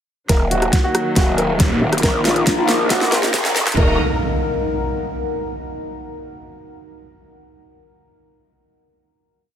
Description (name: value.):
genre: heavy wobble dubstep.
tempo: 138 BPM.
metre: 4/4.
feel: half-time.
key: Eb minor.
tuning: A4 = 440 Hz.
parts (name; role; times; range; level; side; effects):
felt-muted upright piano; melody; 0.3-3.9 s; F4 to Bb4; -23 LUFS; equal; digital delay.
rich studio string section; sustained chords; 0.3-4.0 s; Eb3 to Bb5; -24 LUFS; equal; sidechain pumping.
growl bass; bass; 0.3-4.0 s; Eb1 to Bb1; -21 LUFS; equal; chorus, overdrive.
dubstep drum kit; drums; 0.3-3.8 s; hi-hat, rim click, snare drum; -21 LUFS; equal; overdrive, high-pass filter on snare, small room ambience, high-pass filter on hats.
electronic kick drum; drums; 0.3-3.9 s; none; -17 LUFS; equal; overdrive, small room ambience.
riser and impact; sound effects; 2.1-5.5 s; none; -25 LUFS; equal; none.
deep dark ambient pad; texture; 1.3-5.5 s; Eb4 to Bb5; -26 LUFS; left 2 dB; chorus, built-in reverb, sidechain pumping.
snarling distorted saw bass; bass; 1.6-3.8 s; Eb1 to Bb1; -19 LUFS; equal; distortion, overdrive.
room: light reverb, digital ambience.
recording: high-pass filter.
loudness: -15 LUFS.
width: side -9 dB against mid.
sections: 0.3-3.8 build; 3.8-5.5 final chord.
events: build-up 0.3-3.8; drum fill 0.3-3.8; filter sweep 0.3-3.8.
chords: 0.3 Ebm; 2.0 Bbsus4; 3.8 Ebm.